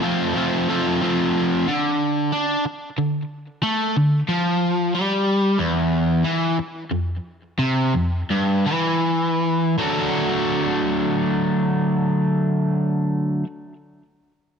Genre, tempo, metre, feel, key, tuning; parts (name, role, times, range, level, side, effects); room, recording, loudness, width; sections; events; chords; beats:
rock; 52-62 BPM (dotted quarters); 6/8; straight; D mixolydian; A4 = 440 Hz
crunchy overdriven guitar; solo; 0.0-13.5 s; E2 to F#4; -19 LUFS; equal; digital delay
light reverb, digital ambience; dark, warm production; -19 LUFS; side -6 dB against mid
0.0-1.7 A section; 1.7-9.8 B section; 9.8-14.4 C section
slowing down 5.6-9.8
0.0 F; 1.7 D5; 5.6 N.C.; 9.8 D
0.70 | 1.67 2.65 | 3.63 4.61 | 5.59 6.58 | 7.59 8.65 | 9.78 10.94 | 12.10 13.26